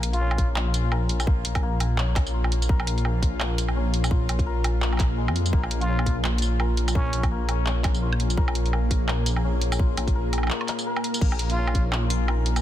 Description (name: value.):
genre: half-time drum and bass.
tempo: 169 BPM.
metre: 4/4.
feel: swing 58% on 16ths, half-time.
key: Bb minor.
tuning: A4 = 440 Hz.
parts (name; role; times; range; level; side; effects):
bowed-like drone; sustained chords; 1.4-12.6 s; Bb2 to F5; -33 LUFS; equal; built-in reverb, vintage 12-bit sampler grit, sidechain pumping.
santur; arpeggios; 0.0-12.6 s; Ab3 to Bb4; -33 LUFS; left 6 dB; ping-pong delay.
dark detuned saw bass; bass; 0.0-12.6 s; Bb1 to F2; -24 LUFS; equal; none.
drum and bass drum kit; drums; 0.0-12.6 s; crash cymbal, handclaps, hi-hat, tambourine, woodblock; -30 LUFS; right 2 dB; none.
trumpet with plunger mute; melody; 0.1-0.5, 5.8-7.2, 11.5-11.9 s; Db4 to F4; -34 LUFS; left 2 dB; ping-pong delay.
electronic kick drum; drums; 0.4-11.8 s; none; -23 LUFS; equal; none.
room: digital ambience.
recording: dense, heavily limited modern master.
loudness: -21 LUFS.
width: side -12 dB against mid.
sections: 0.0-12.6 A section.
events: break 10.5-11.2.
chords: 0.0 Bb5.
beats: 0.21 0.56 0.92 | 1.27 1.63 1.98 2.34 | 2.69 3.05 3.40 3.76 | 4.11 4.47 4.82 5.18 | 5.53 5.89 6.24 6.60 | 6.95 7.31 7.66 8.02 | 8.37 8.73 9.08 9.44 | 9.79 10.15 10.50 10.86 | 11.21 11.57 11.93 12.28.